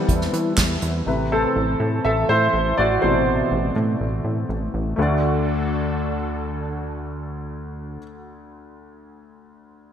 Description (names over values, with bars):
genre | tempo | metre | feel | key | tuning
piano-driven pop | 123 BPM | 4/4 | straight | D mixolydian | A4 = 440 Hz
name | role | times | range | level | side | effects
clear baby grand piano | accompaniment | 0.0-9.9 s | D2 to E5 | -22 LUFS | left 1 dB | analog chorus
lush unison pad | sustained chords | 0.0-8.0 s | D3 to B4 | -31 LUFS | right 2 dB | chorus, phaser
plucky analog bass | bass | 0.0-8.0 s | A1 to E3 | -25 LUFS | equal | none
unplugged drum kit | drums | 0.1-0.9 s | handclaps, hi-hat, kick drum, snare drum | -23 LUFS | right 1 dB | none
room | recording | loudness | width
moderate lush hall reverb, RT60 2.0 s, small room ambience | bright 1980s-style digital production | -19 LUFS | side -8 dB against mid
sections
0.0-5.0 A section; 5.0-8.9 B section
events
grand piano solo 0.0-5.0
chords
0.0 Em; 1.1 Amadd9; 5.0 D